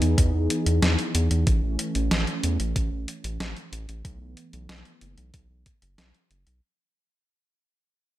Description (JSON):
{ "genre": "synthwave", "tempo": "93 BPM", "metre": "4/4", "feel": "straight", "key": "unclear", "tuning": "A4 = 440 Hz", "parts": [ { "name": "brassy analog pad", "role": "sustained chords", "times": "0.0-6.6 s", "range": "E3 to G#4", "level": "-29 LUFS", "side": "right 1 dB", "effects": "chorus, vintage 12-bit sampler grit, sidechain pumping" }, { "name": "round analog bass", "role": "bass", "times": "0.0-6.6 s", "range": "F#1 to E2", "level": "-25 LUFS", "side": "equal", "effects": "sidechain pumping" }, { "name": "clean 12-bit digital drum machine", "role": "drums", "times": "0.0-6.6 s", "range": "hi-hat, snare drum", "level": "-28 LUFS", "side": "equal", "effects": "none" }, { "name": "electronic kick drum", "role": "drums", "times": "0.2-5.8 s", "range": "none", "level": "-23 LUFS", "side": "equal", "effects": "none" } ], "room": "light reverb", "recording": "none", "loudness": "-22 LUFS", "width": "side -14 dB against mid", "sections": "0.0-6.6 A section", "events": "fade-out 0.0-6.6", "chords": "0.0 Emaj7; 1.5 A; 4.0 B7sus4" }